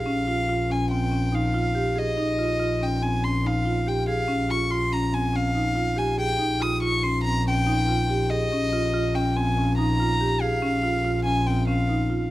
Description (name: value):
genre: contemporary instrumental, chamber music in an uneven meter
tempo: 142 BPM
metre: 5/4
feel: straight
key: Bb dorian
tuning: A4 = 440 Hz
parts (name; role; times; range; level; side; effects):
- warm violin; melody; 0.0-12.3 s; Eb5 to Eb6; -26 LUFS; left 1 dB; none
- marimba with medium hard mallets; arpeggios; 0.0-12.3 s; C4 to Ab4; -26 LUFS; right 1 dB; none
- rich double bass; bass; 0.0-12.3 s; Bb1; -26 LUFS; equal; none
room: light reverb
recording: close, detailed microphones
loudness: -21 LUFS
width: side -16 dB against mid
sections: 0.0-12.3 A section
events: none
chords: 0.0 Bbm